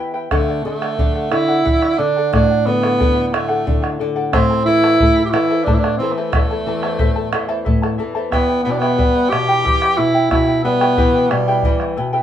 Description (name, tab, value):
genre	andean folk, Andean ensemble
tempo	90 BPM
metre	3/4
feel	straight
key	unclear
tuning	A4 = 441 Hz
part	charango	accompaniment	0.0-12.2 s	E4 to A5	-23 LUFS	left 1 dB	none
part	nylon-string guitar	accompaniment	0.0-12.2 s	E2 to G4	-22 LUFS	left 3 dB	none
part	warm tenor saxophone	melody	0.3-12.0 s	G3 to G4	-17 LUFS	right 2 dB	none
part	bombo	percussion	0.3-12.0 s	none	-19 LUFS	equal	none
room	wet studio reverb, RT60 0.5 s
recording	band playing live in one room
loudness	-14 LUFS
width	side -10 dB against mid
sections	0.3-12.2 A section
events	none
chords	0.3 D; 4.3 Am; 8.3 Em